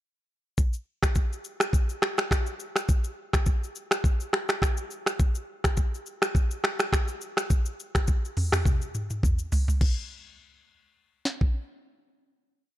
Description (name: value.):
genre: afrobeats.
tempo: 104 BPM.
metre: 4/4.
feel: swing 55% on 16ths.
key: none.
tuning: none.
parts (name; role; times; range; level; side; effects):
afro-pop drum kit; drums; 0.6-11.5 s; crash cymbal, finger snaps, hi-hat, kick drum, rim click, shaker, snare drum, toms; -24 LUFS; equal; none.
room: light reverb.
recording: none.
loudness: -25 LUFS.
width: side -15 dB against mid.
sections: 0.6-9.8 chorus; 9.8-12.1 final hit.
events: drum fill 8.7-9.8.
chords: none.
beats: | 0.58 1.16 1.73 2.31 | 2.89 3.46 4.04 4.62 | 5.20 5.77 6.35 6.93 | 7.50 8.08 8.66 9.23 | 9.81 10.39 10.96.